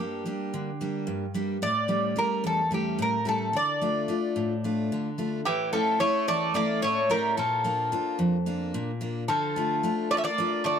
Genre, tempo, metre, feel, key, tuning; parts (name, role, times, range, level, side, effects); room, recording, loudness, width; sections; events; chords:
greek folk, Greek bouzouki band; 219 BPM (eighths); 7/8; straight; A4 = 440 Hz
Greek bouzouki; melody; 0.0-10.8 s; G4 to E5; -27 LUFS; equal; analog delay
picked steel-string acoustic guitar; accompaniment; 0.0-10.8 s; E2 to F4; -28 LUFS; left 1 dB
Greek bouzouki; second line; 5.5-10.8 s; E3 to C#4; -32 LUFS; right 3 dB
moderate small room reverb, RT60 0.5 s; close, detailed microphones; -24 LUFS; side -7 dB against mid
0.0-5.5 A section; 5.5-10.8 B section
0.0 Gm; 1.6 A7; 3.5 Dm; 5.5 A; 7.4 Bb; 9.3 Dm